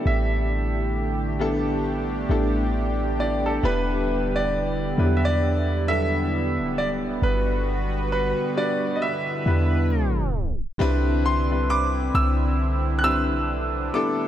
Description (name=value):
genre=contemporary R&B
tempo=67 BPM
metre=4/4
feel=swing 58% on 16ths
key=unclear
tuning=A4 = 440 Hz
part: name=clear concert grand piano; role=accompaniment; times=0.0-14.3 s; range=F#3 to B4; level=-28 LUFS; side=left 2 dB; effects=none
part: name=chorused pulse-width pad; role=sustained chords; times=0.0-14.3 s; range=D3 to B4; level=-27 LUFS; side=right 1 dB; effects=none
part: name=clear baby grand piano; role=melody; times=0.1-14.3 s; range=A4 to F#6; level=-27 LUFS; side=right 1 dB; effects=diffuse ambient delay
part: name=clean 808-style bass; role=bass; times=0.1-13.9 s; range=D1 to E2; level=-24 LUFS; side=equal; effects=none
part: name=glassy synth bell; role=texture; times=11.7-14.0 s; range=B5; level=-39 LUFS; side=right 4 dB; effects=chorus, tremolo, diffuse ambient delay
room=moderate church reverb, RT60 4.1 s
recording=dreamy mix soaked in reverb, tape stop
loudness=-21 LUFS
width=side -11 dB against mid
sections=0.0-10.8 A section; 10.8-14.3 B section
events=tape stop 9.9-10.8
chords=0.0 A9sus4; 3.6 Em7; 7.2 Gmaj7; 9.0 Em7; 10.8 Cmaj9